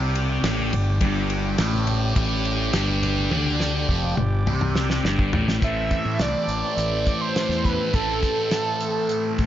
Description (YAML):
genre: psychedelic rock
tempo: 104 BPM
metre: 4/4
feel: straight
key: A minor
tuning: A4 = 440 Hz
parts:
  - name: combo organ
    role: sustained chords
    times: 0.0-9.5 s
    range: G3 to D5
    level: -34 LUFS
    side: right 4 dB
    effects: none
  - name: thick fuzz guitar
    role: riff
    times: 0.0-9.5 s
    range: F2 to A3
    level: -24 LUFS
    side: left 1 dB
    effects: distortion, phaser
  - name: fuzz fingered electric bass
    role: bass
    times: 0.0-9.5 s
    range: F1 to A2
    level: -26 LUFS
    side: equal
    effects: overdrive
  - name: damped 70s drum kit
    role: drums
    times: 0.2-9.5 s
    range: hi-hat, kick drum, ride cymbal, snare drum, toms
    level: -26 LUFS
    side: equal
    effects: none
  - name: congas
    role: percussion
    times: 0.6-5.6 s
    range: none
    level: -36 LUFS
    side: left 1 dB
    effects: none
  - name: overdriven synth lead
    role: melody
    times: 5.6-9.5 s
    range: A4 to E5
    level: -25 LUFS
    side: right 2 dB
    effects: distortion, tape echo
room: light reverb, studio ambience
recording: nothing above 7.5 kHz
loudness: -20 LUFS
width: side -11 dB against mid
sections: 0.0-5.6 A section; 5.6-9.5 B section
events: drum fill 3.3-5.6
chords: 0.0 G5; 5.6 Am7